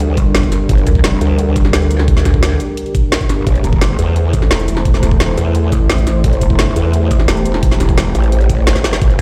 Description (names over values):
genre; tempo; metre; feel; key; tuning
dark technical drum and bass; 173 BPM; 4/4; straight; unclear; A4 = 440 Hz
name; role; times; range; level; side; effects
dark analog pad; sustained chords; 0.0-9.2 s; G3 to C5; -23 LUFS; equal; chorus, sidechain pumping
growl bass; bass; 0.0-9.2 s; G1 to E2; -16 LUFS; equal; chorus, overdrive
drum and bass drum kit; drums; 0.0-9.2 s; cabasa, hi-hat, snare drum; -21 LUFS; equal; overdrive
pulsing pluck wobble bass; bass; 0.2-9.2 s; E1 to D2; -17 LUFS; equal; chorus
electronic kick drum; drums; 0.2-9.2 s; none; -17 LUFS; equal; overdrive
room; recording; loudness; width
digital ambience; played on a big sound system in a bare room, large studio reverb; -13 LUFS; mono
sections
0.0-9.2 A section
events
drum fill 8.8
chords
0.0 Gmadd9; 3.5 Am7